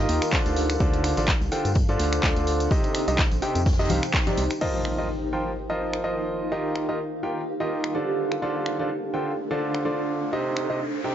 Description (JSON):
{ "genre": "piano house", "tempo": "126 BPM", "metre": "4/4", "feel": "swing 55% on 16ths", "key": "unclear", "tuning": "A4 = 440 Hz", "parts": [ { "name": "clear concert grand piano", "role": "riff", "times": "0.0-11.1 s", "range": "C3 to G5", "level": "-26 LUFS", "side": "right 1 dB", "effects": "sidechain pumping, low-pass filter, tape echo" }, { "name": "organ-like FM bass", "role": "bass", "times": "0.0-4.5 s", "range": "A1 to G2", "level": "-27 LUFS", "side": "equal", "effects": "sidechain pumping" }, { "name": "granular cloud pad", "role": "texture", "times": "0.0-11.1 s", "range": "D4 to G5", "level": "-30 LUFS", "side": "right 1 dB", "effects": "built-in reverb, sidechain pumping" }, { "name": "big rock drum kit", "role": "drums", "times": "0.1-4.6 s", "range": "hi-hat, snare drum", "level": "-41 LUFS", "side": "left 2 dB", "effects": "none" }, { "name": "punchy analog drum machine", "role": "drums", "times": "0.1-10.7 s", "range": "crash cymbal, finger snaps, handclaps, hi-hat", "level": "-29 LUFS", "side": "equal", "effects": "none" }, { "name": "tambourine and congas", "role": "percussion", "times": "0.2-4.6 s", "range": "none", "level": "-36 LUFS", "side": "left 4 dB", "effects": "none" }, { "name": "electronic kick drum", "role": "drums", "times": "0.3-4.2 s", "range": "none", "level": "-24 LUFS", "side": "equal", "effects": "none" }, { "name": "impact and riser", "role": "sound effects", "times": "4.6-11.1 s", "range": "none", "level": "-36 LUFS", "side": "equal", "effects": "none" } ], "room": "studio reverb", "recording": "dry, gritty hardware recording, nothing above 7.6 kHz", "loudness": "-22 LUFS", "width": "side -10 dB against mid", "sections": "0.0-4.6 A section; 4.6-11.1 B section", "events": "band accent 4.1; impact 4.6-6.5; riser 9.1-11.1", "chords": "0.0 Ebadd9; 0.6 Dm7; 2.7 Cm; 4.6 F7sus4; 6.5 Ebadd9; 8.2 Dm7; 10.3 Cm" }